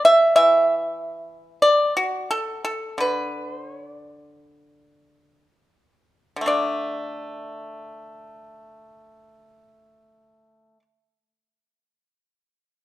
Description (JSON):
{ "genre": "chinese traditional, Chinese solo plucked strings", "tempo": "58-98 BPM", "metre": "4/4", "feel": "rubato", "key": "unclear", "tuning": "A4 = 443 Hz", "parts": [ { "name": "pipa", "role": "solo", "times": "0.0-10.8 s", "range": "D3 to E5", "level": "-18 LUFS", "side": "equal", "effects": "none" } ], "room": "moderate recital hall reverb, RT60 1.6 s", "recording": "minimal, uncompressed stereo recording", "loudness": "-19 LUFS", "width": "side -15 dB against mid", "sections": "0.0-6.5 A section; 6.5-10.4 B section", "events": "slowing down 0.4-6.5", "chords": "none" }